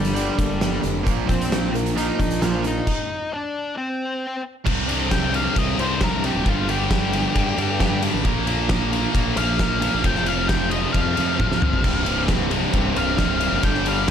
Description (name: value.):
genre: quiet-loud alternative rock.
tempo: 134 BPM.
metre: 4/4.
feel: straight.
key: C minor.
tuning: A4 = 438 Hz.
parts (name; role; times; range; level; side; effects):
octave-fuzz lead guitar; melody; 0.0-14.1 s; F3 to G5; -26 LUFS; left 2 dB; distortion, slapback echo.
fingerpicked steel-string acoustic guitar; arpeggios; 0.0-2.9 s; G2 to Bb4; -30 LUFS; left 4 dB; slapback echo.
cranked stack guitar; riff; 0.0-14.1 s; C2 to Bb3; -27 LUFS; right 12 dB; overdrive.
distorted electric guitar; riff; 0.0-2.9, 11.8-14.1 s; C2 to Bb3; -28 LUFS; equal; overdrive.
fuzz fingered electric bass; bass; 0.0-14.1 s; C1 to G2; -26 LUFS; equal; overdrive.
oversized low-tuned drum kit; drums; 0.0-14.1 s; crash cymbal, hi-hat, kick drum, ride cymbal, snare drum, toms; -23 LUFS; equal; none.
scooped high-gain guitar; riff; 4.7-14.1 s; C2 to Bb3; -25 LUFS; left 12 dB; distortion.
room: small room reverb.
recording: none.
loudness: -19 LUFS.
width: side -8 dB against mid.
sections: 0.0-4.7 A section; 4.7-14.1 B section.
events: stop 2.9-4.7; lead electric guitar solo 4.7-14.1; drum fill 11.4-11.8.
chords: 0.0 Gm; 1.1 Bbadd9; 2.9 Cmadd9; 4.7 C5; 6.5 G5; 8.3 Bb5; 10.1 F5; 11.8 C5.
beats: 0.16 0.61 | 1.06 1.51 1.96 2.41 | 2.86 3.31 3.76 4.21 | 4.66 5.11 5.56 6.01 | 6.46 6.91 7.36 7.80 | 8.25 8.70 9.15 9.60 | 10.05 10.50 10.95 11.40 | 11.85 12.29 12.74 13.19 | 13.64 14.09.